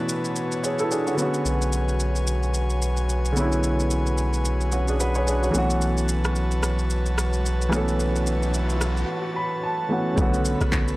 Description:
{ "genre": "amapiano", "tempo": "110 BPM", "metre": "4/4", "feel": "swing 58% on 16ths", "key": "unclear", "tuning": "A4 = 440 Hz", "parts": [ { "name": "warm baby grand piano", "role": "accompaniment", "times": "0.0-11.0 s", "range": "B2 to B5", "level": "-25 LUFS", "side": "right 1 dB", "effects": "none" }, { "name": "airy breathy pad", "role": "sustained chords", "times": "0.0-11.0 s", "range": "B3 to B5", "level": "-30 LUFS", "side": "left 1 dB", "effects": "chorus, sidechain pumping" }, { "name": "deep house drum kit", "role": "drums", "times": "0.1-11.0 s", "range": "handclaps, kick drum, rim click, shaker", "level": "-30 LUFS", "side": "equal", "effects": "none" }, { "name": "warm sub bass", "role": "bass", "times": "1.5-9.0 s", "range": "B1", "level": "-24 LUFS", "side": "equal", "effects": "none" }, { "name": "riser", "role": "sound effects", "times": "7.3-9.1 s", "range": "none", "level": "-38 LUFS", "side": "equal", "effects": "none" }, { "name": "deep log drum bass", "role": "bass", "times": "10.2-11.0 s", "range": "B1", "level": "-24 LUFS", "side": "equal", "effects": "none" }, { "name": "congas and bongos", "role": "percussion", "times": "10.2-10.9 s", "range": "none", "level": "-33 LUFS", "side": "left 3 dB", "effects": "none" } ], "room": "digital ambience", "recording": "dry, gritty hardware recording, transformer saturation, lossy compression artefacts", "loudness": "-21 LUFS", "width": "side -19 dB against mid", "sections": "0.0-10.2 A section", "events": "riser 7.3-10.2; break 9.1-10.2; grand piano fill 9.1-10.2", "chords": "0.0 Dmaj7/B; 1.2 E13/B; 5.5 A69/B; 10.2 Bm9", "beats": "0.36 0.91 | 1.45 2.00 2.54 3.09 | 3.63 4.18 4.72 5.27 | 5.82 6.36 6.91 7.45 | 8.00 8.54 9.09 9.63 | 10.18 10.72" }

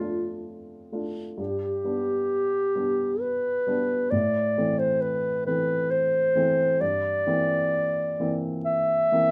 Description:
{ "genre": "classical, romantic duo for clarinet and grand piano", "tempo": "66 BPM", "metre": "3/4", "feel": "rubato", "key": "unclear", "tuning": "A4 = 439 Hz", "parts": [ { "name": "mellow clarinet", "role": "melody", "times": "0.0-9.3 s", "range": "F4 to E5", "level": "-26 LUFS", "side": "equal", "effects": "none" }, { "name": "warm baby grand piano", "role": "accompaniment", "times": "0.0-9.3 s", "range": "F2 to F4", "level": "-32 LUFS", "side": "equal", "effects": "none" } ], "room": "light reverb", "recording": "none", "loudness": "-25 LUFS", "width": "mono", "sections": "0.0-9.3 A section", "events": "none", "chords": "0.0 Dm/F; 1.4 G; 4.1 Am; 6.8 C7/G", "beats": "0.47 | 1.39 2.30 3.22 | 4.13 5.03 5.92 | 6.81 7.73 8.66" }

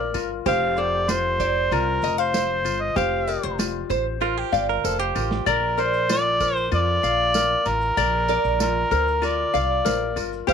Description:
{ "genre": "acoustic pop", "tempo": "96 BPM", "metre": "4/4", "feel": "straight", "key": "Bb major", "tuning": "A4 = 440 Hz", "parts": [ { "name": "mellow harmonica", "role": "melody", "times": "0.0-10.5 s", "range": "Bb4 to F5", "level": "-22 LUFS", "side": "equal", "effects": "none" }, { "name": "ukulele", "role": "accompaniment", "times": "0.0-10.5 s", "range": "F4 to F5", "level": "-25 LUFS", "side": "left 14 dB", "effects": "none" }, { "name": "upright bass", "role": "bass", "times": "0.0-10.5 s", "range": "F1 to F2", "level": "-28 LUFS", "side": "right 1 dB", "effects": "none" }, { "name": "modern studio drum kit", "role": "drums", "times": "0.1-10.5 s", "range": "kick drum, shaker, snare drum", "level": "-32 LUFS", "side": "right 2 dB", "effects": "none" }, { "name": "tambourine", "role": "percussion", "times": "0.1-10.5 s", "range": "none", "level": "-35 LUFS", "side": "right 17 dB", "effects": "none" }, { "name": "nylon-string guitar", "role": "arpeggios", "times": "0.2-10.5 s", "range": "Bb4 to F5", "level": "-29 LUFS", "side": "right 18 dB", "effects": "none" }, { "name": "direct-recorded clean electric guitar", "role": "second line", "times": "4.2-5.4 s", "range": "F4 to Bb4", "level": "-26 LUFS", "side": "right 17 dB", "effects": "none" } ], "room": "light reverb, small room ambience", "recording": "1960s-style stereo with parts hard left and right", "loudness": "-20 LUFS", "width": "side -7 dB against mid", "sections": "0.0-10.5 A section", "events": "drum fill 4.8-5.5", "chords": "0.5 Fsus2; 5.5 Bb", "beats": "| 0.47 1.09 1.72 2.34 | 2.97 3.59 4.22 4.84 | 5.47 6.10 6.72 7.35 | 7.97 8.60 9.23 9.86 | 10.48" }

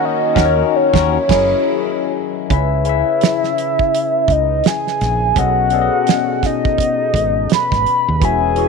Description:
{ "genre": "R&B, neo-soul", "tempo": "84 BPM", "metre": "4/4", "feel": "swing 61% on 16ths", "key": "C# dorian", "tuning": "A4 = 440 Hz", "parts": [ { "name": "soft octave-layered synth lead", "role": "melody", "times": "0.0-8.7 s", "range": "C#5 to B5", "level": "-17 LUFS", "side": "right 1 dB", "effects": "chorus, phaser" }, { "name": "barky tine electric piano", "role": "accompaniment", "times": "0.0-8.7 s", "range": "B2 to E5", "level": "-19 LUFS", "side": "left 14 dB", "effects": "overdrive, phaser" }, { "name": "clear studio string section", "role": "sustained chords", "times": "0.0-2.5 s", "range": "D#3 to F#4", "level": "-31 LUFS", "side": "right 1 dB", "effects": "none" }, { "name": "woody fretless electric bass", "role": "bass", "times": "0.4-8.7 s", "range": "E1 to D#2", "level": "-19 LUFS", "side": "right 2 dB", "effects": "none" }, { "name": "damped 70s drum kit", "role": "drums", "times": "0.4-8.7 s", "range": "crash cymbal, hi-hat, kick drum, snare drum", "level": "-18 LUFS", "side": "right 6 dB", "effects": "none" } ], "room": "small room ambience", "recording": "1960s-style stereo with parts hard left and right", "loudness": "-13 LUFS", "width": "side -4 dB against mid", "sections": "0.0-2.5 A section; 2.5-8.7 A section", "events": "band accent 0.0-2.5", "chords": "0.0 D#m7; 1.1 F#13; 2.5 C#m7; 5.4 B13", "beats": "0.36 1.07 1.79 | 2.50 3.22 3.93 4.64 | 5.36 6.07 6.79 7.50 | 8.22" }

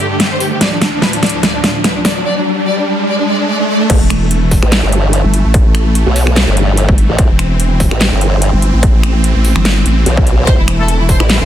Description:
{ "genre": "heavy wobble dubstep", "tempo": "146 BPM", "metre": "4/4", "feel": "swing 54% on 16ths, half-time", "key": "A minor", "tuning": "A4 = 440 Hz", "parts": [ { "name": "warm studio violin section", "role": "melody", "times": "0.0-3.9, 10.5-11.5 s", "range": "D4 to D5", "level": "-18 LUFS", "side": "left 1 dB", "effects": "low-pass filter, dub echo" }, { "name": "supersaw chords", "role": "sustained chords", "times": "0.0-11.5 s", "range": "D2 to C4", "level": "-20 LUFS", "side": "right 1 dB", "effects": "phaser, sidechain pumping" }, { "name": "riser", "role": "sound effects", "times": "0.0-3.9 s", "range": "none", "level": "-17 LUFS", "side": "right 1 dB", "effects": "none" }, { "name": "dubstep drum kit", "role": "drums", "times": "0.2-11.4 s", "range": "crash cymbal, finger snaps, handclaps, hi-hat, snare drum", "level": "-16 LUFS", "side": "equal", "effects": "studio reverb" }, { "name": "formant-sweep wobble bass", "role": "bass", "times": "3.9-11.5 s", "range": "G1 to B1", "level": "-12 LUFS", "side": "equal", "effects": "chorus, overdrive" }, { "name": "electronic kick drum", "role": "drums", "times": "3.9-11.2 s", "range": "none", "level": "-12 LUFS", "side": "equal", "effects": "distortion, studio reverb" }, { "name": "vowel-sweep wobble bass", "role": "bass", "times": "4.0-11.2 s", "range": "E1 to A1", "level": "-12 LUFS", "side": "equal", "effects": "chorus, overdrive" }, { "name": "warm brass ensemble", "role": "stabs", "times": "10.8-10.9 s", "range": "A3 to A4", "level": "-22 LUFS", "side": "left 3 dB", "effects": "dub echo" } ], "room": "light reverb, digital ambience", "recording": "dense, heavily limited modern master", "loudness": "-9 LUFS", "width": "side -11 dB against mid", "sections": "0.0-3.9 A section; 3.9-11.5 B section", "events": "build-up 0.0-3.9; drum fill 0.0-2.3; riser 0.0-3.9; drop 3.9-11.5", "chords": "0.0 Gsus2; 0.6 Dm; 2.3 N.C.; 3.9 Am", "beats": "0.20 | 0.61 1.02 1.43 1.84 | 2.25 2.67 3.08 3.49 | 3.90 4.31 4.72 5.13 | 5.54 5.95 6.36 6.77 | 7.18 7.60 8.01 8.42 | 8.83 9.24 9.65 10.06 | 10.47 10.88 11.29" }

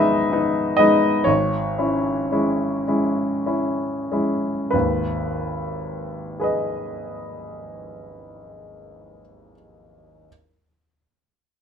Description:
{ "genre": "classical, romantic nocturne for solo piano", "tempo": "29-45 BPM (dotted quarters)", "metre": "6/8", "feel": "rubato", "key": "G# minor", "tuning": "A4 = 440 Hz", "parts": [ { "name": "clear grand piano", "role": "solo", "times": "0.0-10.3 s", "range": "G#1 to G#5", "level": "-20 LUFS", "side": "left 1 dB", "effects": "none" } ], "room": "light reverb", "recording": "minimal, uncompressed stereo recording", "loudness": "-19 LUFS", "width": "side -7 dB against mid", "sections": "0.0-4.7 A section; 4.7-8.0 B section", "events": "slowing down 0.0-4.7", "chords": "0.0 G#m; 1.3 C#m/G#; 4.7 G#m", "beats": "| 1.26 2.85 | 4.72 6.37" }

